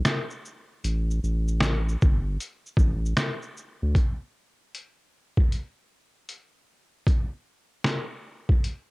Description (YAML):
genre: lo-fi hip hop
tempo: 77 BPM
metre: 4/4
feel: swing 65% on 16ths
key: unclear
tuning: A4 = 442 Hz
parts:
  - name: saturated sub bass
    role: bass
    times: 0.0-3.9 s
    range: G1 to D2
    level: -25 LUFS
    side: equal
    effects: none
  - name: trip hop sampler-style drum kit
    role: drums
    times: 0.1-8.9 s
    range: finger snaps, hi-hat, kick drum, shaker, snare drum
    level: -23 LUFS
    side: equal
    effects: cassette tape
room: little or no reverb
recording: home recording on cassette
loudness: -24 LUFS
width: side -25 dB against mid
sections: 0.0-3.9 A section; 3.9-8.9 B section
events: none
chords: none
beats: 0.05 | 0.83 1.61 2.39 3.17 | 3.95 4.73 5.50 6.28 | 7.06 7.84 8.62